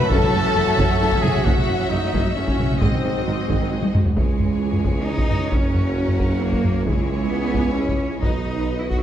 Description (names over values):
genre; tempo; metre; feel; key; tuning
cinematic, epic orchestral film score; 133 BPM; 3/4; straight; C# dorian from 4.2 s; A4 = 440 Hz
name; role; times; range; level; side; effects
clear symphonic violin section; melody; 0.0-9.0 s; C#5 to E5; -31 LUFS; left 3 dB; none
warm symphonic violin section; second line; 0.0-9.0 s; G#4 to B5; -30 LUFS; left 4 dB; none
rich symphonic viola section; accompaniment; 0.0-9.0 s; D#3 to F#4; -31 LUFS; right 1 dB; none
clear symphonic string section; sustained chords; 0.0-9.0 s; C#4 to G#5; -34 LUFS; left 3 dB; none
warm French horn section; sustained chords; 0.0-9.0 s; B#3 to C#5; -29 LUFS; left 6 dB; none
warm trombone section; sustained chords; 0.0-9.0 s; C#3 to F#3; -32 LUFS; right 4 dB; none
clear trumpet; stabs; 0.0-3.9 s; B#3 to A4; -28 LUFS; right 2 dB; none
rich studio cello section; bass; 0.0-9.0 s; F#2 to F#4; -26 LUFS; right 2 dB; none
rich symphonic double bass section; bass; 0.1-9.0 s; F#1 to F#2; -28 LUFS; right 3 dB; none
warm tuba; bass; 0.1-9.0 s; F#1 to C#2; -28 LUFS; right 3 dB; none
taiko ensemble; drums; 0.1-9.0 s; none; -22 LUFS; equal; none
room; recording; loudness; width
moderate scoring stage reverb, RT60 1.7 s; dark, warm production; -18 LUFS; side -10 dB against mid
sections
0.0-4.2 A section; 4.2-9.0 B section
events
drum fill 3.8-4.2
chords
0.0 F#m7; 2.8 G#7; 4.2 C#m; 5.5 F#; 6.9 C#m; 8.2 B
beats
| 0.11 0.56 1.01 | 1.46 1.91 2.36 | 2.81 3.26 3.71 | 4.16 4.62 5.07 | 5.52 5.97 6.42 | 6.87 7.32 7.77 | 8.23 8.68